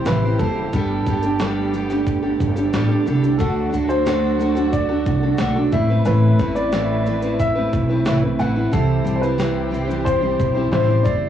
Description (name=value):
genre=acoustic pop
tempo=90 BPM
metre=4/4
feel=straight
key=D mixolydian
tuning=A4 = 441 Hz
part: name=dark upright piano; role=melody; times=0.0-11.3 s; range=A4 to F#5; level=-24 LUFS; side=left 1 dB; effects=cassette tape
part: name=picked steel-string acoustic guitar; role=accompaniment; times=0.0-11.3 s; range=A2 to C5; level=-21 LUFS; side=equal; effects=cassette tape
part: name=dark studio string section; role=sustained chords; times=0.0-11.3 s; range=D3 to B4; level=-28 LUFS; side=right 3 dB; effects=cassette tape
part: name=upright bass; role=bass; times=0.1-11.3 s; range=F#1 to D2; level=-22 LUFS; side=right 1 dB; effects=none
part: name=breakbeat sampler-style drum kit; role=drums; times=0.1-11.2 s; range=kick drum, shaker, snare drum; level=-25 LUFS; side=right 1 dB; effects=vintage 12-bit sampler grit, cassette tape
room=small room ambience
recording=home recording on cassette, studio ambience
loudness=-17 LUFS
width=side -10 dB against mid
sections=0.0-11.3 A section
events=none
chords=0.0 C; 0.7 Gadd9; 3.4 D; 5.7 Amadd9; 8.7 C